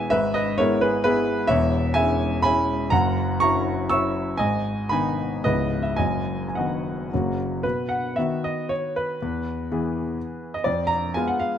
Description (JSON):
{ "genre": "classical, romantic triple-time dance for piano with dotted rhythms", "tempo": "98-138 BPM", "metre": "3/4", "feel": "rubato", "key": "B major", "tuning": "A4 = 438 Hz", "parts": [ { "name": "clear grand piano", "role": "solo", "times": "0.0-11.6 s", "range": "C#1 to E6", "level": "-21 LUFS", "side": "equal", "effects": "none" } ], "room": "moderate recital hall reverb, RT60 1.7 s", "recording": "close, detailed microphones", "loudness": "-21 LUFS", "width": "side -9 dB against mid", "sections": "0.0-7.6 A section; 7.6-11.6 B section", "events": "none", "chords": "0.1 E/G#; 1.5 C#m7/E; 2.9 F#7; 4.4 G#m; 5.4 C#m7; 6.0 B/F#; 7.1 F#; 7.6 B; 9.2 E; 10.6 Fdim", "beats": "| 0.12 0.59 1.07 | 1.51 1.98 2.46 | 2.94 3.43 3.93 | 4.40 4.91 5.44 | 5.97 6.55 7.12 | 7.64 8.17 8.70 | 9.20 9.68 10.17 | 10.65 11.14" }